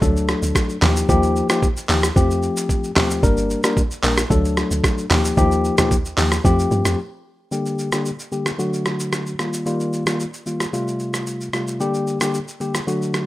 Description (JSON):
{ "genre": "afrobeats", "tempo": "112 BPM", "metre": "4/4", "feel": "straight", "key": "G minor", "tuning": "A4 = 440 Hz", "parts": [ { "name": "tine electric piano", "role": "accompaniment", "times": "0.0-13.3 s", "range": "C3 to Bb4", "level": "-21 LUFS", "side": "left 2 dB", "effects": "low-pass filter" }, { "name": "deep log drum bass", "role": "bass", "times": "0.0-7.0 s", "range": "G1 to G2", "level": "-21 LUFS", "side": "right 1 dB", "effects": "none" }, { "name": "boom bap sampler-style drum kit", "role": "drums", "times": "0.0-13.3 s", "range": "handclaps, hi-hat, kick drum, rim click, shaker, toms", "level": "-20 LUFS", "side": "right 1 dB", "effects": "none" } ], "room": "digital ambience", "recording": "rough home demo mix", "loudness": "-17 LUFS", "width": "side -16 dB against mid", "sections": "0.0-7.5 A section; 7.5-13.3 B section", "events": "break 7.0-7.5; filter sweep on tine electric piano 7.5-13.3", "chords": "0.0 D; 0.8 Ebadd9; 2.2 Fadd9; 3.2 Gm; 4.3 D; 5.1 Ebadd9; 6.4 Fadd9; 7.5 Gm; 8.6 D; 9.4 Ebadd9; 10.7 Fadd9; 11.8 Gm" }